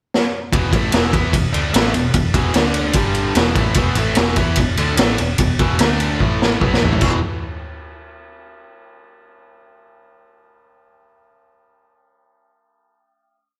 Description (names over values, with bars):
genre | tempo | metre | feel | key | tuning
blues rock power trio and southern rock | 148 BPM | 4/4 | straight | unclear | A4 = 441 Hz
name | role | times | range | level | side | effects
raw garage drum kit | drums | 0.1-7.1 s | crash cymbal, kick drum, ride cymbal, snare drum, toms | -20 LUFS | equal | none
biting overdriven guitar | riff | 0.5-7.2 s | E2 to E4 | -23 LUFS | equal | slapback echo
vintage muted fingered electric bass | bass | 0.5-7.2 s | E1 to E2 | -24 LUFS | equal | none
room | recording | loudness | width
light reverb, studio reverb | none | -17 LUFS | mono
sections
0.0-0.5 pickup bar; 0.5-7.0 riff; 7.0-8.6 final chord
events
drum fill 0.1-0.5, 6.2-7.0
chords
0.0 N.C.; 0.5 E5; 2.6 D5; 3.0 G5; 3.4 E5; 5.8 D5; 6.2 A5; 6.6 E5